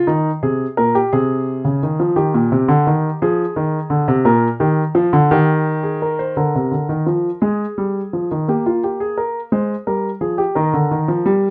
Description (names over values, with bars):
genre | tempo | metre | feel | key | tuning
classical, baroque-style two-part invention for grand piano | 57 BPM (dotted quarters) | 6/8 | straight | unclear | A4 = 440 Hz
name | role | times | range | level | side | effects
warm concert grand piano | solo | 0.0-11.5 s | Bb2 to C5 | -18 LUFS | equal | none
room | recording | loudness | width
light reverb | none | -18 LUFS | mono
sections
0.0-6.4 A section; 6.4-11.5 B section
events
none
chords
0.1 Eb; 1.1 Ab/C; 2.2 Eb; 3.2 Fm7; 4.3 Bb; 5.3 Eb; 6.4 Bb; 7.4 Ab5; 8.5 Gm/Bb; 9.5 Fm; 10.6 Eb